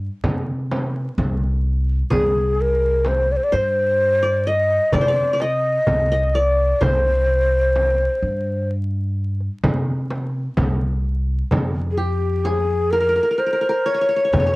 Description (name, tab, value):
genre	Turkish makam ensemble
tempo	128 BPM (eighths)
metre	10/8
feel	straight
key	C makam ussak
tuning	A4 = 442 Hz
part	upright bass	bass	0.0-14.6 s	C2 to C3	-22 LUFS	equal	none
part	frame drum	percussion	0.2-14.6 s	none	-25 LUFS	equal	none
part	breathy mellow ney	melody	2.1-14.6 s	G4 to Eb5	-18 LUFS	left 1 dB	none
part	qanun	second line	2.1-14.6 s	G4 to Eb5	-27 LUFS	right 2 dB	none
part	darbuka	percussion	2.1-14.6 s	none	-25 LUFS	equal	none
room	little or no reverb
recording	dry, gritty hardware recording, vinyl crackle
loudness	-17 LUFS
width	side -22 dB against mid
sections	0.0-11.5 A section; 11.5-14.6 B section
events	none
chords	none